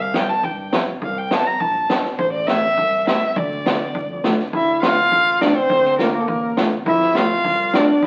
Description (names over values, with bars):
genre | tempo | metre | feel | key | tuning
klezmer | 103 BPM | 2/4 | straight | D minor | A4 = 440 Hz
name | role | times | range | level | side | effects
dark violin | melody | 0.0-8.1 s | A4 to Bb5 | -22 LUFS | equal | none
warm double bass | bass | 0.0-8.1 s | A1 to G2 | -34 LUFS | equal | none
nylon-string guitar | accompaniment | 0.1-7.9 s | G3 to F4 | -28 LUFS | equal | none
street-band drum kit | drums | 0.1-8.1 s | kick drum, snare drum | -24 LUFS | equal | none
mellow clarinet | second line | 4.5-8.1 s | Bb3 to F4 | -22 LUFS | equal | none
room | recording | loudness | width
wet studio reverb, RT60 0.8 s | very old 78 rpm record, vinyl crackle | -19 LUFS | mono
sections
0.0-4.5 A section; 4.5-8.1 B section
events
none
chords
0.0 C; 2.2 Am; 3.4 Dm; 6.9 F